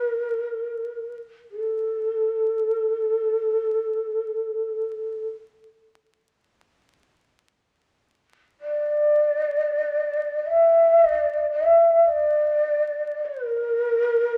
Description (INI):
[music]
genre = japanese traditional, Japanese chamber music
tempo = free time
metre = none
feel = none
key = unclear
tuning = A4 = 445 Hz
[part]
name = breathy mellow shakuhachi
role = solo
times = 0.0-5.3, 8.6-14.4 s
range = A4 to E5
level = -23 LUFS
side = equal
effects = none
[sound]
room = wet recital hall reverb, RT60 1.4 s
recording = vinyl crackle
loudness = -23 LUFS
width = mono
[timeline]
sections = 0.0-14.4 A section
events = none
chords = none